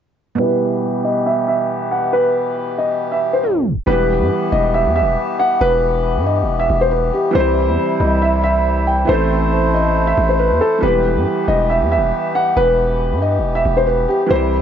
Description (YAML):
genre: hip hop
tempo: 138 BPM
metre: 4/4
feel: half-time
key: E harmonic minor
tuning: A4 = 439 Hz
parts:
  - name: dark concert grand piano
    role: melody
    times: 0.4-14.6 s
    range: G4 to G5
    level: -17 LUFS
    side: equal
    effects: low-pass filter, tape echo
  - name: felt-muted upright piano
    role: accompaniment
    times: 0.4-14.6 s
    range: B2 to C5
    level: -22 LUFS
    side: right 4 dB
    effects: low-pass filter
  - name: mellow accordion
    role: sustained chords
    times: 0.4-14.6 s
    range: C3 to C5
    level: -22 LUFS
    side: left 2 dB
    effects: low-pass filter
  - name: distorted 808-style bass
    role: bass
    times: 3.9-14.6 s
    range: E1 to G2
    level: -19 LUFS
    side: equal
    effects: distortion
room: light reverb, small room ambience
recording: tape stop, nothing above 7.6 kHz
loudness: -14 LUFS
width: side -8 dB against mid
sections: 0.4-3.9 A section; 3.9-14.6 B section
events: filter sweep 0.4-3.9; tape stop 3.4-3.9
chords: 0.4 Em; 7.3 C; 9.1 Am; 10.8 Em